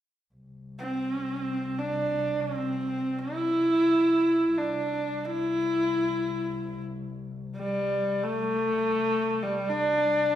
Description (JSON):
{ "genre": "mongolian traditional, Mongolian folk", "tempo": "free time", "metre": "none", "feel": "none", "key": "C gong mode", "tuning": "A4 = 442 Hz", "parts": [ { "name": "warm double bass", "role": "drone", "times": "0.3-10.4 s", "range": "C2", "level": "-38 LUFS", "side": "left 3 dB", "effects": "none" }, { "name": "clear horsehead fiddle", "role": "melody", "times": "0.8-10.4 s", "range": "G3 to E4", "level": "-25 LUFS", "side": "equal", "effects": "none" } ], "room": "wet recital hall reverb, RT60 1.5 s", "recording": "recorded in a church or concert hall", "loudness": "-25 LUFS", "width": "side -11 dB against mid", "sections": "0.3-10.4 A section", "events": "none", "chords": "none", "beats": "free time" }